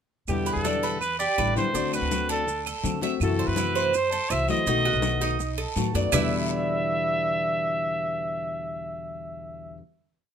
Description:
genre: latin, Cuban son and guajira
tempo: 164 BPM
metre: 4/4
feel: straight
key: E minor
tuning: A4 = 441 Hz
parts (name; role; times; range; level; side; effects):
- clear trumpet; melody; 0.3-9.8 s; G4 to E5; -27 LUFS; right 1 dB; none
- fingerpicked plugged-in steel-string acoustic guitar; accompaniment; 0.3-9.8 s; E2 to F#4; -30 LUFS; left 5 dB; none
- upright bass; bass; 0.3-9.8 s; A1 to D3; -31 LUFS; equal; none
- claves; percussion; 0.3-6.2 s; none; -35 LUFS; right 8 dB; none
- congas; percussion; 0.3-6.2 s; none; -33 LUFS; left 5 dB; none
- guiro; percussion; 0.3-6.2 s; none; -39 LUFS; left 6 dB; none
- maracas; percussion; 0.3-6.2 s; none; -38 LUFS; right 8 dB; none
- Cuban tres; arpeggios; 0.5-9.8 s; D4 to E5; -29 LUFS; right 4 dB; none
room: moderate studio reverb, RT60 0.7 s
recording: minimal, uncompressed stereo recording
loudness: -23 LUFS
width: side -8 dB against mid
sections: 0.3-6.1 montuno (vamp); 6.1-9.1 final chord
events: none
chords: 0.3 Em7; 1.7 D7; 3.2 F#m7b5; 4.7 B7; 6.1 Em7

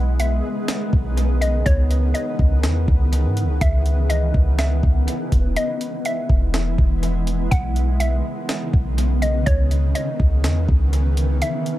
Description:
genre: hip hop, atmospheric cloud-rap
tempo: 123 BPM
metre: 4/4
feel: half-time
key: unclear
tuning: A4 = 440 Hz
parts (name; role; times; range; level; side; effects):
- mallet-like synth pluck; melody; 0.0-11.8 s; C#5 to F#5; -28 LUFS; equal; chorus, analog delay
- shimmering ambient pad; sustained chords; 0.0-11.8 s; C#3 to E4; -26 LUFS; equal; chorus, built-in reverb, sidechain pumping
- clean 808-style bass; bass; 0.0-11.4 s; E1 to G#2; -19 LUFS; equal; none
- breakbeat sampler-style drum kit; drums; 0.2-11.8 s; hi-hat, kick drum, snare drum; -21 LUFS; equal; none
room: little or no reverb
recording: echo-heavy mix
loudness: -17 LUFS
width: side -15 dB against mid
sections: 0.0-11.8 A section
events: break 5.6-6.1, 11.4-11.8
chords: 0.0 B69; 1.7 C#m9; 5.6 Emaj7; 7.5 B69; 9.5 C#m9

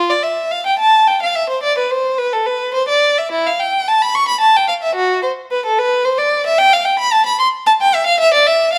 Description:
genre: classical, baroque-style suite movement for unaccompanied violin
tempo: 110 BPM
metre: 3/4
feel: rubato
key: unclear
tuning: A4 = 440 Hz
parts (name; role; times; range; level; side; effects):
- rich violin; solo; 0.0-8.8 s; E4 to Db6; -15 LUFS; equal; none
room: wet stone room reverb, RT60 1.2 s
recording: heard from further back in the room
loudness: -15 LUFS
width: mono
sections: 0.0-8.8 A section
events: none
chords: none

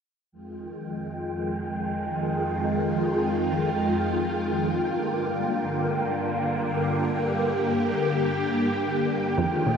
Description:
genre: ambient, sequencer-driven space music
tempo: free time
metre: none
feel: none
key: F dorian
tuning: A4 = 442 Hz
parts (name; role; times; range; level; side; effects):
- phased string machine; sustained chords; 0.3-9.8 s; F2 to G4; -24 LUFS; equal; ensemble chorus, phaser
- wind-like tuned noise texture; texture; 0.9-9.8 s; G5; -32 LUFS; right 3 dB; built-in reverb
- resonant blip pluck; riff; 9.4-9.8 s; F2 to Bb2; -25 LUFS; right 2 dB; phaser, ensemble chorus
room: wet huge ambient reverb, RT60 7.8 s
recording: none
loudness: -24 LUFS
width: side -7 dB against mid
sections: 0.3-9.8 A section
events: none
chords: 0.3 Fm7; 4.9 Gm7

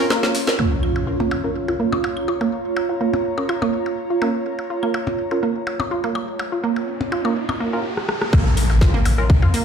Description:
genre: minimal techno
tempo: 124 BPM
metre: 4/4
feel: straight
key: Bb minor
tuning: A4 = 439 Hz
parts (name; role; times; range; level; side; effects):
- wavetable chord stab; stabs; 0.0-9.2 s; Db4 to Bb4; -27 LUFS; left 1 dB; cassette tape, tape echo
- airy breathy pad; texture; 0.0-7.8 s; F4 to C6; -24 LUFS; right 4 dB; chorus, sidechain pumping
- swarming drone; texture; 0.2-0.6 s; Db4; -32 LUFS; left 2 dB; built-in reverb, sidechain pumping
- resonant blip pluck; riff; 0.1-9.6 s; Bb3 to Bb4; -24 LUFS; right 3 dB; chorus, sidechain pumping, tape echo
- garage drum kit; drums; 0.1-0.6, 8.0-9.6 s; hi-hat, rim click, snare drum; -23 LUFS; equal; low-pass filter on hats, low-pass filter on snare
- natural country drum kit; drums; 0.1-0.6, 8.3-9.6 s; ride cymbal, snare drum; -36 LUFS; left 2 dB; none
- percussion blips and claves; percussion; 0.1-9.5 s; none; -28 LUFS; left 3 dB; overdrive, tape echo
- shekere; percussion; 0.1-0.6 s; none; -34 LUFS; right 4 dB; none
- impact, riser and downlifter; sound effects; 0.6-9.6 s; none; -27 LUFS; left 1 dB; none
- saturated sub bass; bass; 8.3-9.5 s; Ab1 to F2; -18 LUFS; equal; sidechain pumping
- electronic kick drum; drums; 8.3-9.4 s; none; -14 LUFS; equal; none
room: moderate small room reverb, RT60 0.5 s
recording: played on a big sound system in a bare room, large studio reverb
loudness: -18 LUFS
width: side -7 dB against mid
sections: 0.6-8.3 A section; 8.3-9.6 B section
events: break 0.0-0.6; drum fill 0.2-0.6, 8.0-8.3; band accent 0.5; impact 0.6-2.5; filter sweep on synth arpeggio sound 0.6-8.3; filter sweep on synth stab 0.6-8.3; riser 5.2-8.3; drop 8.3-9.6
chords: 0.0 Bbm; 8.3 Bb5

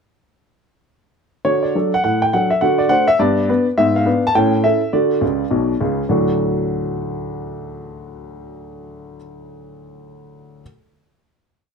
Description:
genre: jazz, stride piano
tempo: 207 BPM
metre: 4/4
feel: swing 62% on 8ths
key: D major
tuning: A4 = 440 Hz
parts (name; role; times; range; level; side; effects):
- warm grand piano; solo; 1.4-10.6 s; B1 to A5; -16 LUFS; equal; none
room: moderate club reverb, RT60 0.8 s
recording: none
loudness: -15 LUFS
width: side -6 dB against mid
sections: 1.5-6.1 A section; 6.1-8.4 final chord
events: grand piano fill 5.2-6.1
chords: 1.5 D; 2.6 D7; 3.2 G; 3.8 G#dim7; 4.4 A7; 4.9 D

